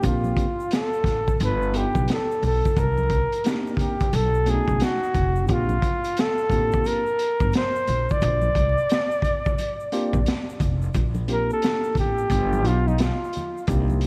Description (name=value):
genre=hip hop, jazz-hop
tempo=88 BPM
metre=4/4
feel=swing 62% on 16ths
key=Bb major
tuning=A4 = 442 Hz
part: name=breathy flugelhorn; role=melody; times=0.0-13.7 s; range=Eb4 to D5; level=-27 LUFS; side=equal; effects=tape echo
part: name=tine electric piano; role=accompaniment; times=0.0-14.1 s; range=A3 to G4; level=-32 LUFS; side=equal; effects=none
part: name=upright bass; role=bass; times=0.0-14.1 s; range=F1 to C2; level=-26 LUFS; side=equal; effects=none
part: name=crunchy breakbeat drum kit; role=drums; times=0.0-14.1 s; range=hi-hat, kick drum, snare drum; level=-28 LUFS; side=equal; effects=none
part: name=egg shaker and congas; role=percussion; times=0.0-14.1 s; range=none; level=-38 LUFS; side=equal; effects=none
room=light reverb, small room ambience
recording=vinyl crackle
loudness=-23 LUFS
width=mono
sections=0.0-10.9 A section; 10.9-14.1 B section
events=flugelhorn solo 10.9-14.1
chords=0.0 Bb6; 1.4 G7b13; 2.8 Cm9; 4.1 B9; 5.5 Bb6; 12.3 G7b13